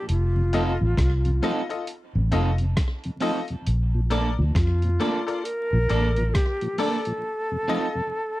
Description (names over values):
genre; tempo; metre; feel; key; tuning
roots reggae; 67 BPM; 4/4; swing 60% on 16ths; Bb major; A4 = 440 Hz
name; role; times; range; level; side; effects
mellow hollow silver concert flute; melody; 0.0-8.4 s; F4 to Bb4; -28 LUFS; equal; dub echo
vintage muted fingered electric bass; bass; 0.1-6.3 s; F1 to F2; -22 LUFS; equal; none
dusty soul sampler-style drum kit; drums; 0.1-7.2 s; hi-hat, kick drum, rim click; -26 LUFS; equal; none
mellow tonewheel organ; accompaniment; 0.4-8.0 s; F2 to Eb4; -32 LUFS; equal; chorus vibrato, slow rotary speaker, slapback echo
electric guitar at the edge of break-up; accompaniment; 0.5-7.9 s; Bb3 to A4; -31 LUFS; right 4 dB; dub echo
bright upright piano; stabs; 0.5-7.9 s; F4 to Eb5; -30 LUFS; left 6 dB; none
room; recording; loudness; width
little or no reverb; dry, close 1970s-style studio recording, vinyl crackle; -22 LUFS; side -17 dB against mid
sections
0.0-8.4 A section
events
break 7.2-8.4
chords
0.1 F7; 3.7 Bbmaj7; 7.2 F7